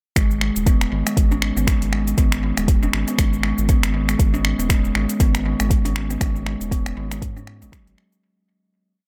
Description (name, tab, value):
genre	afro house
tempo	119 BPM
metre	4/4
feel	swing 58% on 16ths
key	G# minor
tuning	A4 = 444 Hz
part	kalimba	arpeggios	0.2-8.1 s	D#3 to C#4	-27 LUFS	equal	sidechain pumping, dub echo
part	round analog bass	bass	0.2-8.0 s	D#1 to G#2	-27 LUFS	equal	sidechain pumping
part	afro-pop drum kit	drums	0.2-8.2 s	cabasa, finger snaps, hi-hat	-28 LUFS	equal	analog delay
part	electronic kick drum	drums	0.2-7.8 s	none	-21 LUFS	equal	none
room	little or no reverb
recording	echo-heavy mix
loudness	-20 LUFS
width	mono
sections	0.2-8.2 drop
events	drop 0.2-8.2; fade-out 5.5-8.2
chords	0.2 G#m